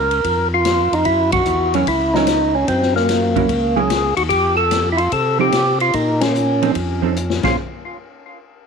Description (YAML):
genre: soul jazz organ trio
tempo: 147 BPM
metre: 4/4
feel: swing 67% on 8ths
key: unclear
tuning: A4 = 440 Hz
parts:
  - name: percussive tonewheel organ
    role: melody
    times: 0.0-7.6 s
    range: Bb3 to Bb4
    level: -17 LUFS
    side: equal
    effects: overdrive, slow rotary speaker, tape echo
  - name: tonewheel organ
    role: bass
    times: 0.0-7.6 s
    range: Bb1 to C3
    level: -22 LUFS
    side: equal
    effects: overdrive
  - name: swinging big-band drum kit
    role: drums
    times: 0.1-7.5 s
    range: crash cymbal, hi-hat, kick drum, ride cymbal, snare drum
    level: -24 LUFS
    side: left 7 dB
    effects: none
  - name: vintage hollow-body jazz guitar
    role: accompaniment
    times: 1.7-7.6 s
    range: F3 to C5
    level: -21 LUFS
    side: right 15 dB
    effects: none
room: light reverb, small room reverb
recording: 1960s-style stereo with parts hard left and right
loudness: -15 LUFS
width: side -5 dB against mid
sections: 0.0-7.6 A section; 7.6-8.7 B section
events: band accent 1.3, 6.1; drum fill 7.2-7.6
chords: 0.0 Bbm; 1.1 Gb7; 4.3 F; 5.9 Bbmadd9; 6.8 F7; 7.4 Bbm9; 7.6 N.C.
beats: 0.25 0.66 | 1.06 1.47 1.88 2.28 | 2.69 3.10 3.50 3.91 | 4.32 4.72 5.13 5.54 | 5.95 6.35 6.76 7.17